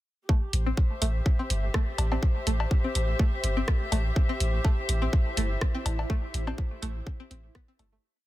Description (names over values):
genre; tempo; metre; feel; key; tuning
minimal techno; 124 BPM; 4/4; swing 55% on 16ths; A minor; A4 = 440 Hz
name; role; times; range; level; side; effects
string-like resonator pluck; riff; 0.3-8.0 s; A3 to C4; -36 LUFS; equal; chorus, phaser, cassette tape, sidechain pumping, dub echo
electronic kick drum; drums; 0.3-7.7 s; none; -25 LUFS; equal; none
warm chamber string section; texture; 0.3-8.0 s; G4 to E5; -36 LUFS; left 2 dB; sidechain pumping
punchy sub bass; bass; 0.5-8.0 s; G1 to A1; -27 LUFS; equal; sidechain pumping
garage drum kit; drums; 0.5-7.9 s; hi-hat, rim click; -33 LUFS; equal; soft clipping on snare
cowbell; percussion; 2.0-7.9 s; none; -38 LUFS; left 6 dB; tape echo
swarming drone; texture; 5.1-8.0 s; E4; -44 LUFS; right 1 dB; built-in reverb, sidechain pumping
room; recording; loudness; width
digital ambience; dense, heavily limited modern master; -24 LUFS; side -16 dB against mid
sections
0.3-8.0 groove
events
fade-out 5.5-8.0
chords
0.3 Am